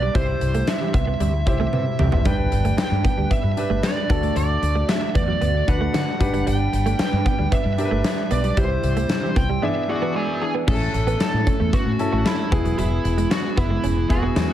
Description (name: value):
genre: 1980s-style pop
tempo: 114 BPM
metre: 4/4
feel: straight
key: G major, A major from 10.7 s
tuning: A4 = 441 Hz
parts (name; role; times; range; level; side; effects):
- high-gain lead guitar; melody; 0.0-14.5 s; E4 to G#5; -26 LUFS; right 2 dB; distortion, tape echo
- clear grand piano; accompaniment; 0.0-14.5 s; B3 to D5; -28 LUFS; left 2 dB; none
- chorused pulse-width pad; sustained chords; 0.0-14.5 s; C3 to B4; -31 LUFS; left 1 dB; none
- direct-recorded clean electric guitar; riff; 0.0-14.5 s; F#3 to D4; -29 LUFS; right 5 dB; ensemble chorus
- mellow fretless electric bass; bass; 0.0-14.5 s; E1 to D3; -23 LUFS; equal; none
- huge arena drum kit; drums; 0.1-14.5 s; crash cymbal, hi-hat, kick drum, snare drum, tambourine, toms; -23 LUFS; equal; gated reverb
- funky polysynth comp; stabs; 0.8-2.2, 9.2-10.6 s; E3 to G#4; -31 LUFS; left 2 dB; chorus, tape echo
room: light reverb, small room ambience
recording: none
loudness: -18 LUFS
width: side -11 dB against mid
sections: 0.0-10.7 A section; 10.7-14.5 A section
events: band accent 0.2-2.3, 8.6-10.7; drum fill 1.7-2.3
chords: 0.2 C; 2.3 G; 4.1 D; 6.2 G; 8.6 C; 9.6 E7; 10.7 A; 12.5 E